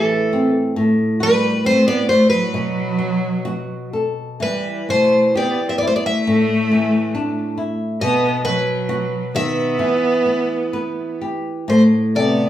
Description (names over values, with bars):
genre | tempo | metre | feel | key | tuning
fado-style ballad | 62-70 BPM | 2/4 | rubato | E minor | A4 = 440 Hz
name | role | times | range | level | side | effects
picked twelve-string acoustic guitar | melody | 0.0-12.5 s | A4 to E5 | -19 LUFS | equal | none
rich cello | second line | 0.0-12.5 s | E3 to C4 | -21 LUFS | right 1 dB | none
flamenco guitar | accompaniment | 0.0-12.5 s | A2 to B4 | -20 LUFS | left 1 dB | none
room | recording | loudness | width
wet large studio reverb, RT60 0.8 s | band playing live in one room | -16 LUFS | side -12 dB against mid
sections
0.0-11.7 A section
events
none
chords
0.0 Am; 0.8 F#dim/A; 2.5 B5; 4.4 Em; 6.3 Asus4; 8.0 B; 9.8 Em; 11.7 Am7